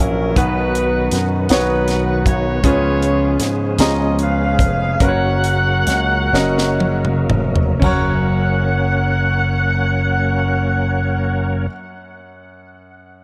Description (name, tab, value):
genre	slow gospel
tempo	37-53 BPM (dotted quarters)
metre	6/8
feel	straight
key	F# major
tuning	A4 = 440 Hz
part	mellow saxophone section	melody	0.0-11.7 s	C#4 to F#5	-24 LUFS	equal	tape echo
part	clear grand piano	accompaniment	0.0-13.2 s	F#2 to A#5	-24 LUFS	equal	none
part	bright tonewheel organ	sustained chords	0.0-11.7 s	C#3 to C#5	-26 LUFS	equal	fast rotary speaker, chorus vibrato
part	slap bass with an envelope filter	bass	0.0-11.7 s	E#1 to G#2	-22 LUFS	equal	none
part	tight funk drum kit	drums	0.4-8.1 s	hi-hat, kick drum, snare drum, splash cymbal, toms	-21 LUFS	equal	none
room	light reverb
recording	none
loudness	-17 LUFS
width	mono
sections	0.0-7.8 A section; 7.8-11.0 B section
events	slowing down 2.6-7.8; drum fill 6.3-7.8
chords	0.4 B; 2.6 C#7; 5.0 F#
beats	| 0.36 1.50 | 2.63 3.79 | 5.00 6.33 | 7.82 9.43